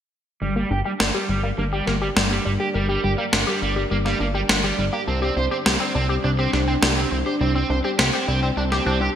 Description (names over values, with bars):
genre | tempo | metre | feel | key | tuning
synthwave | 103 BPM | 4/4 | straight | G minor | A4 = 440 Hz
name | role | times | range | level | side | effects
warm analog pad | sustained chords | 1.3-9.1 s | G3 to D5 | -29 LUFS | equal | chorus
analog pluck | arpeggios | 0.4-9.1 s | G3 to C5 | -27 LUFS | left 3 dB | chorus, digital delay
overdriven semi-hollow guitar | riff | 0.4-9.1 s | G3 to C5 | -25 LUFS | right 3 dB | lush chorus, low-pass filter, digital delay
fat analog bass | bass | 0.4-9.1 s | G1 to C2 | -24 LUFS | equal | none
electronic snare drum | drums | 1.0-8.8 s | none | -23 LUFS | equal | gated reverb, gated reverb snare
room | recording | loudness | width
moderate lush hall reverb, RT60 1.8 s, digital ambience | bright 1980s-style digital production | -19 LUFS | side -9 dB against mid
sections
0.4-9.2 A section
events
filter sweep on analog synth bass 0.4-9.2; filter sweep on synth arpeggio sound 0.4-9.2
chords
0.4 Gm; 5.1 Csus2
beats
| 0.42 1.00 1.58 2.17 | 2.75 3.33 3.91 4.50 | 5.08 5.66 6.24 6.83 | 7.41 7.99 8.57